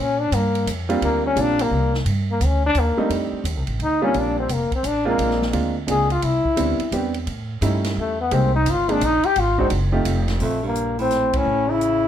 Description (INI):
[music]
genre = jazz, small-group swing and bop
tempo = 172 BPM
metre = 3/4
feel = swing 65% on 8ths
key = G minor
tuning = A4 = 440 Hz
[part]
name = bright trombone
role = melody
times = 0.0-12.1 s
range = A3 to Ab4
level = -21 LUFS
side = left 3 dB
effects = plate reverb
[part]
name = upright bass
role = bass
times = 0.0-12.1 s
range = F1 to Bb2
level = -23 LUFS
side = equal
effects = none
[part]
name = open jazz drum kit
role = drums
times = 0.3-11.9 s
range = hi-hat, kick drum, ride cymbal, snare drum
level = -32 LUFS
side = right 2 dB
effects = none
[part]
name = warm baby grand piano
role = accompaniment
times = 0.9-10.4 s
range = G3 to Ab4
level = -24 LUFS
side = right 3 dB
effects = none
[part]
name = warm baritone saxophone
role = second line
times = 10.4-12.1 s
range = F2 to C#3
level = -26 LUFS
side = right 6 dB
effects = none
[sound]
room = moderate club reverb, RT60 0.5 s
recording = none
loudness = -18 LUFS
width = side -10 dB against mid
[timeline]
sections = 0.0-2.1 A section; 2.1-10.4 A section; 10.4-12.1 B section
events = trombone solo 0.0-10.4; band accent 11.3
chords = 0.0 Bb69; 2.1 Gm; 3.1 F13; 4.1 Bb69; 5.2 Bb9; 6.2 Cmaj9; 7.3 A7#11; 8.3 Abmaj7; 9.4 Ab7#11; 10.1 F9; 10.4 Bbmaj7(no3); 11.5 A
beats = 0.32 0.67 | 1.01 1.36 1.71 | 2.06 2.40 2.75 | 3.10 3.45 3.79 | 4.14 4.49 4.84 | 5.18 5.53 5.88 | 6.23 6.58 6.92 | 7.27 7.62 7.97 | 8.31 8.66 9.01 | 9.36 9.71 10.06 | 10.41 10.76 11.11 | 11.46 11.81